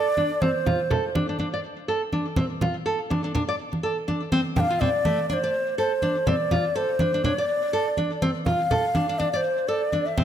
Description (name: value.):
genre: afro house.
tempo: 123 BPM.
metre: 4/4.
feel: swing 57% on 16ths.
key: unclear.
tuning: A4 = 441 Hz.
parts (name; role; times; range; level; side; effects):
breathy bass bansuri; melody; 0.0-1.1, 4.6-10.2 s; C5 to G5; -24 LUFS; equal; ping-pong delay.
nylon-string guitar; arpeggios; 0.0-10.2 s; A3 to D5; -27 LUFS; equal; low-pass filter, ping-pong delay.
cabasa; drums; 0.2-10.2 s; none; barely audible; none; none.
congas; percussion; 0.2-10.2 s; none; -26 LUFS; right 1 dB; none.
room: moderate recital hall reverb, RT60 1.6 s.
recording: none.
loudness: -22 LUFS.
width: side -9 dB against mid.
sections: 0.0-10.2 A section.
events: none.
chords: 0.0 D5; 5.3 Csus2; 9.2 N.C..